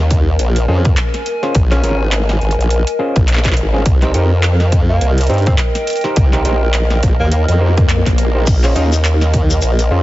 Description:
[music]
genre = glitch hop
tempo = 104 BPM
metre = 4/4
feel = swing 58% on 16ths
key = Bb dorian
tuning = A4 = 442 Hz
[part]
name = formant-sweep wobble bass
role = bass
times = 0.0-10.0 s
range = Ab1 to G2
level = -14 LUFS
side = equal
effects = chorus, overdrive
[part]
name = warbly tape-like pad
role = texture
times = 0.0-10.0 s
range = Bb4 to Ab5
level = -22 LUFS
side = equal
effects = chorus, built-in reverb, sidechain pumping
[part]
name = dubstep drum kit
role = drums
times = 0.1-9.9 s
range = crash cymbal, handclaps, hi-hat, snare drum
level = -22 LUFS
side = equal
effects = none
[part]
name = electronic kick drum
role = drums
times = 0.1-9.5 s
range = none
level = -14 LUFS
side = equal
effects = none
[part]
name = overdriven clav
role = stabs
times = 0.7-10.0 s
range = Db4 to C5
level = -22 LUFS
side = equal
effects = sidechain pumping, tape echo
[part]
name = breathy tenor saxophone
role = melody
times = 1.7-9.0 s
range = Bb3 to Eb4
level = -25 LUFS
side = equal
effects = tape echo
[part]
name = swell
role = sound effects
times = 7.5-8.5 s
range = none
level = -26 LUFS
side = left 3 dB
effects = none
[part]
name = shekere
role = percussion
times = 8.5-9.9 s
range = none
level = -26 LUFS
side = left 4 dB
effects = none
[sound]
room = light reverb, digital ambience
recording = heavily compressed radio sound, multiband compression, nothing above 7.7 kHz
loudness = -11 LUFS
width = side -16 dB against mid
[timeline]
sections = 0.0-10.0 A section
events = swell 7.5-8.5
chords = 0.0 Bbm7; 3.9 Cm7; 8.5 Bbm7

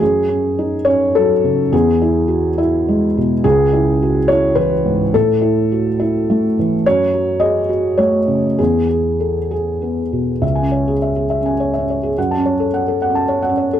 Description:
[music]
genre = neoclassical minimalist piano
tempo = 104 BPM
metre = 3/4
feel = rubato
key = C# minor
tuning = A4 = 439 Hz
[part]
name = felt-muted upright piano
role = solo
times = 0.0-13.8 s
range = C#2 to A5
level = -14 LUFS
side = equal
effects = none
[sound]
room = moderate small room ambience, RT60 0.5 s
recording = none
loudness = -14 LUFS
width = side -10 dB against mid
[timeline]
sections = 0.0-10.4 A section; 10.4-13.8 B section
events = none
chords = 0.0 F#m; 1.7 E; 3.4 C#m; 5.1 A5; 6.8 F#m; 8.6 E; 10.4 C#m; 12.2 F#m

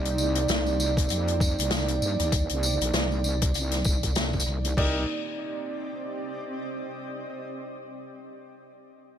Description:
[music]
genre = glitch hop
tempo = 98 BPM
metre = 4/4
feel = swing 59% on 16ths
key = C minor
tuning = A4 = 443 Hz
[part]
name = dark analog pad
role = sustained chords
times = 0.0-5.1 s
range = Bb3 to D5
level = -31 LUFS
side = right 3 dB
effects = chorus, vintage 12-bit sampler grit, sidechain pumping
[part]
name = wobble bass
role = bass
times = 0.0-5.1 s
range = Bb1 to G2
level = -28 LUFS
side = equal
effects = chorus
[part]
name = granular cloud pad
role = texture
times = 0.0-7.2 s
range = C4 to Eb5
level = -37 LUFS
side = right 1 dB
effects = built-in reverb, sidechain pumping
[part]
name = swinging big-band drum kit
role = drums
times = 0.1-4.9 s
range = crash cymbal, hi-hat, rim click, snare drum, tambourine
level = -29 LUFS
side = left 2 dB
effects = none
[part]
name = electronic kick drum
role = drums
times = 1.0-4.9 s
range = none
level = -25 LUFS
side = equal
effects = overdrive
[part]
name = warm grand piano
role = stabs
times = 4.8-5.0 s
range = Eb4 to D5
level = -34 LUFS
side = equal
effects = sidechain pumping, digital delay
[sound]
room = light reverb, small room ambience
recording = none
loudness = -24 LUFS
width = side -9 dB against mid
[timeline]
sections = 0.0-4.8 A section; 4.8-7.2 B section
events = fade-out on ambient pad 0.0-4.8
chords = 0.0 Cm9

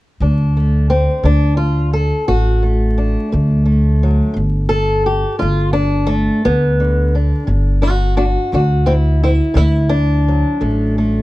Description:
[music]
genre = acoustic country blues, solo or duo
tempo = 58 BPM (dotted quarters)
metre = 12/8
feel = straight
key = D major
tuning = A4 = 435 Hz
[part]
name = fingerpicked old ladder-braced acoustic guitar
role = melody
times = 0.2-11.2 s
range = D2 to A4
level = -17 LUFS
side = equal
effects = none
[part]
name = upright bass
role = bass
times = 0.2-11.2 s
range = G1 to D2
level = -14 LUFS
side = equal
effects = none
[sound]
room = light reverb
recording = dark, warm production, vinyl crackle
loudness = -13 LUFS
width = side -18 dB against mid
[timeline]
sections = 0.2-11.2 A section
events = steel-string acoustic guitar solo 0.2-11.2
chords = 0.2 D5; 4.4 G5; 8.5 D

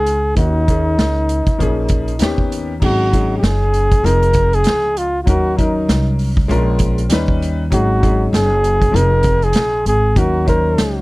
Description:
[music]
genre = hip hop, jazz-hop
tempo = 98 BPM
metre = 4/4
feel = swing 59% on 16ths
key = Eb dorian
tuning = A4 = 445 Hz
[part]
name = breathy flugelhorn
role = melody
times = 0.0-11.0 s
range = Eb4 to Bb4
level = -17 LUFS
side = equal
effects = none
[part]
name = warm upright piano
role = accompaniment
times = 0.0-11.0 s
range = Eb3 to C5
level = -22 LUFS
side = left 2 dB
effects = none
[part]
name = upright bass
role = bass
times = 0.0-11.0 s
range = F1 to Eb2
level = -17 LUFS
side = equal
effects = none
[part]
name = vintage drum kit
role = drums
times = 0.1-10.9 s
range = crash cymbal, hi-hat, kick drum, snare drum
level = -18 LUFS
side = equal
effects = none
[sound]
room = little or no reverb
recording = dry, close 1970s-style studio recording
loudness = -13 LUFS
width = side -21 dB against mid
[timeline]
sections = 0.0-2.8 A section; 2.8-11.0 B section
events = none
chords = 0.4 Ebm7; 1.6 Bbm7; 2.2 Ebaug7; 2.8 Ab7sus4; 4.0 Fm7; 5.3 Ebm7; 6.5 Bbm7; 7.1 Ebaug7; 7.7 Ab7sus4; 8.9 Fm7; 10.2 Ebm7

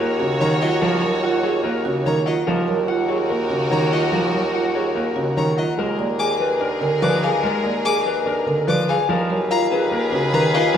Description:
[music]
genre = classical, minimalist pattern music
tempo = 145 BPM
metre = 4/4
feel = straight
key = Eb minor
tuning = A4 = 440 Hz
[part]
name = electric guitar at the edge of break-up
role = melody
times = 0.0-10.8 s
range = Bb4 to Ab5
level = -24 LUFS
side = left 6 dB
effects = none
[part]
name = warm grand piano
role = accompaniment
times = 0.0-10.8 s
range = Db3 to D4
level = -24 LUFS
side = right 1 dB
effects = none
[part]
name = rich chamber violin section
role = sustained chords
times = 0.0-10.8 s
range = Gb4 to Db5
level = -26 LUFS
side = left 2 dB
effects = none
[part]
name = marimba with medium mallets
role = arpeggios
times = 0.0-10.8 s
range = F4 to D5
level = -24 LUFS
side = right 5 dB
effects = none
[part]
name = clear bassoon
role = bass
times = 0.0-10.8 s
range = Eb2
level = -25 LUFS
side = equal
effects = none
[part]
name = warm violin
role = arpeggios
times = 0.4-10.7 s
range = Eb5 to D6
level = -29 LUFS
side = left 2 dB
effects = none
[sound]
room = wet recital hall reverb, RT60 1.6 s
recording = none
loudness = -18 LUFS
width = side -8 dB against mid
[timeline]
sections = 0.0-10.8 A section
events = none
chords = 0.0 Ebm11; 5.8 Bb7b9/Eb; 9.1 Abm11/Eb

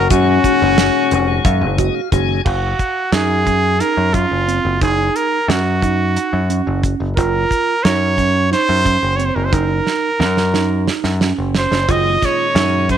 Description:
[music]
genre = progressive instrumental, band music in an uneven meter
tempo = 178 BPM (eighths)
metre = 7/8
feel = straight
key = Gb lydian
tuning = A4 = 441 Hz
[part]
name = bright trumpet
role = melody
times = 0.0-13.0 s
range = F4 to Eb5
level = -18 LUFS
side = right 2 dB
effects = slapback echo
[part]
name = breathy flugelhorn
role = second line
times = 0.0-1.8 s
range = Db4 to Gb4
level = -17 LUFS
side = left 14 dB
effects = none
[part]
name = tonewheel organ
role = accompaniment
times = 0.0-2.4, 11.9-13.0 s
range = Bb2 to Ab5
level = -23 LUFS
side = left 13 dB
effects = slow rotary speaker
[part]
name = picked electric bass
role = bass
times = 0.0-13.0 s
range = F1 to Gb2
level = -18 LUFS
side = left 2 dB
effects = none
[part]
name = mellow tine electric piano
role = arpeggios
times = 0.1-13.0 s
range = C4 to F5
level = -22 LUFS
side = right 12 dB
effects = slapback echo
[part]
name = damped 70s drum kit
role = drums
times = 0.1-13.0 s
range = crash cymbal, hi-hat, kick drum, snare drum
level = -19 LUFS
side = right 1 dB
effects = none
[part]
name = tube shaker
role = percussion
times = 0.1-1.6 s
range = none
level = -33 LUFS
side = left 14 dB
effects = none
[sound]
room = light reverb, small room ambience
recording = 1960s-style stereo with parts hard left and right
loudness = -14 LUFS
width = side -9 dB against mid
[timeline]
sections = 0.0-2.5 A section; 2.5-13.0 B section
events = tonewheel organ fill 1.4-2.5; drum fill 9.9-11.9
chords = 0.0 Gbmaj7

